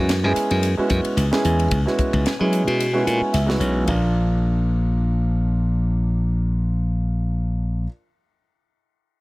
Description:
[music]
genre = electric jazz fusion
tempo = 111 BPM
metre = 4/4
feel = swing 54% on 16ths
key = unclear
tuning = A4 = 439 Hz
[part]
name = dark grand piano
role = accompaniment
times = 0.0-7.9 s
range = F3 to Ab5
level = -24 LUFS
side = right 1 dB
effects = none
[part]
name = glassy slap bass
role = bass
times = 0.0-7.9 s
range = Bb1 to Gb3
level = -20 LUFS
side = equal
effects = none
[part]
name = crisp fusion drum kit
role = drums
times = 0.1-4.0 s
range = hi-hat, kick drum, ride cymbal, snare drum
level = -26 LUFS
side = equal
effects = none
[sound]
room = light reverb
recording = none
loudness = -18 LUFS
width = side -21 dB against mid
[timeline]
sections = 0.0-3.9 A section; 3.9-8.2 B section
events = grand piano fill 2.8-3.9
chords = 0.0 Gb9sus4; 3.9 Bb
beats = 0.08 0.62 1.17 | 1.71 2.25 2.79 3.33 | 3.87 4.42 4.96 5.50 | 6.04 6.59 7.13 7.67

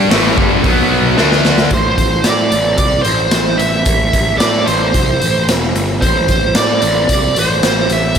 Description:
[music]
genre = hard rock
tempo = 112 BPM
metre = 4/4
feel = straight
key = A minor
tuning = A4 = 440 Hz
[part]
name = cranked stack guitar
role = riff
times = 0.0-1.7 s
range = G2 to D4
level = -18 LUFS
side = right 10 dB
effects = overdrive, slapback echo
[part]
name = overdriven semi-hollow guitar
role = riff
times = 0.0-1.7 s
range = G2 to G4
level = -17 LUFS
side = left 10 dB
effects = none
[part]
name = scooped high-gain guitar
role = riff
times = 0.0-1.7 s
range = G2 to G4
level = -19 LUFS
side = equal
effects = distortion, slapback echo
[part]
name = fuzz picked electric bass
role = bass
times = 0.0-8.2 s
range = E1 to A2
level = -18 LUFS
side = equal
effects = overdrive
[part]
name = raw garage drum kit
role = drums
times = 0.1-8.2 s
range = hi-hat, kick drum, snare drum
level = -15 LUFS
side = equal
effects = none
[part]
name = high-gain lead guitar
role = melody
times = 1.7-8.2 s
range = C5 to E5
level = -15 LUFS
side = right 3 dB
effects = distortion, slapback echo, digital delay
[sound]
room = moderate lush hall reverb, RT60 2.4 s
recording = big arena sound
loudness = -11 LUFS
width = side -7 dB against mid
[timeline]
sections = 0.0-1.7 A section; 1.7-8.2 B section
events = drum fill 1.2-1.7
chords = 0.1 A5; 0.6 B5; 1.2 D5; 1.7 Am; 5.5 N.C.; 6.0 Am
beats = 0.11 0.65 1.18 | 1.72 2.25 2.79 3.33 | 3.86 4.40 4.94 5.47 | 6.01 6.55 7.08 7.62 | 8.16

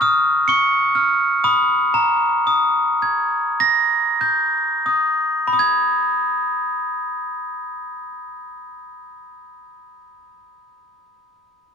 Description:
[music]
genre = children's music, lullaby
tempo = 28-43 BPM (dotted quarters)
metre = 6/8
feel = straight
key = G# minor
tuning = A4 = 440 Hz
[part]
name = glockenspiel with rubber mallets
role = solo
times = 0.0-10.5 s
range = A#5 to C#7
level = -17 LUFS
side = equal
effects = none
[sound]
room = light reverb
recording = none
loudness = -16 LUFS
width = side -6 dB against mid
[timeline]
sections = 0.0-5.5 A section; 5.5-9.7 B section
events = slowing down 0.0-5.5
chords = 0.0 C#add9; 1.9 D#sus4; 3.6 D#; 5.5 G#m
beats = 0.47 | 1.95 3.60 | 5.53 7.61

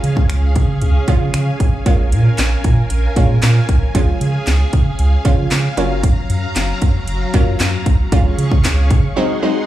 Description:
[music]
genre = dance-pop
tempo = 115 BPM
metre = 4/4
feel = straight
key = Db major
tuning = A4 = 440 Hz
[part]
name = analog pluck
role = accompaniment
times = 0.0-9.7 s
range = F3 to F4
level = -21 LUFS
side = right 2 dB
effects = chorus
[part]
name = string machine, violas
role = sustained chords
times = 0.0-9.7 s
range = Gb3 to Db6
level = -25 LUFS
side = left 1 dB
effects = ensemble chorus, sidechain pumping
[part]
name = warm sub bass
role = bass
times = 0.0-9.1 s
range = Gb1 to Db3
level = -16 LUFS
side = right 1 dB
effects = sidechain pumping
[part]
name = house drum kit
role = drums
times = 0.0-9.0 s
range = finger snaps, handclaps, hi-hat, kick drum, snare drum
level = -16 LUFS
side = equal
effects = none
[sound]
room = light reverb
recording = small room reverb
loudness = -13 LUFS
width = side -13 dB against mid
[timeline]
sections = 0.0-9.7 A section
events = break 9.2-9.7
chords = 0.0 Db; 1.9 Bbm7; 3.9 Db; 5.8 Gbmaj7; 8.1 Db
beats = 0.29 0.82 1.34 | 1.86 2.38 2.90 3.43 | 3.95 4.47 4.99 5.51 | 6.04 6.56 7.08 7.60 | 8.12 8.64 9.16

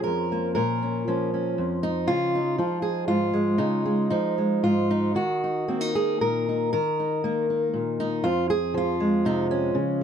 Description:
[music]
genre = folk, solo fingerstyle acoustic guitar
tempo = 118 BPM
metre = 3/4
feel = rubato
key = Db major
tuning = A4 = 440 Hz
[part]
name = fingerpicked steel-string acoustic guitar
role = solo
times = 0.0-10.0 s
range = F2 to Bb4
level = -22 LUFS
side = equal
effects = none
[sound]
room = moderate small room reverb, RT60 0.5 s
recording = dark, warm production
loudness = -22 LUFS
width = side -8 dB against mid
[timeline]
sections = 0.0-10.0 A section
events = none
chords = 0.0 Bbm; 2.1 Dbadd9; 5.2 Ebm; 8.2 Fm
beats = 0.05 | 0.56 1.06 1.57 | 2.08 2.58 3.08 | 3.59 4.11 4.64 | 5.17 5.69 6.21 | 6.73 7.24 7.74 | 8.24 8.74 9.24 | 9.75

